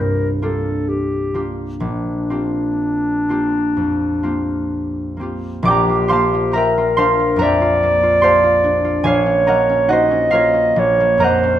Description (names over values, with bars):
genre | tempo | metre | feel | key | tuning
classical, impressionist duo for clarinet and harp | 60-74 BPM | 4/4 | rubato | unclear | A4 = 440 Hz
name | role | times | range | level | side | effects
mellow clarinet | melody | 0.0-11.6 s | D4 to Eb5 | -17 LUFS | equal | none
concert harp | accompaniment | 0.0-11.6 s | Bb1 to D6 | -18 LUFS | right 1 dB | none
room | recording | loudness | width
wet recital hall reverb, RT60 1.4 s | none | -14 LUFS | side -11 dB against mid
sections
0.0-5.7 A section; 5.7-11.6 A section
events
none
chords
0.0 C9sus4; 1.8 Bb69; 5.7 Bb6; 9.1 Gbmaj7/Bb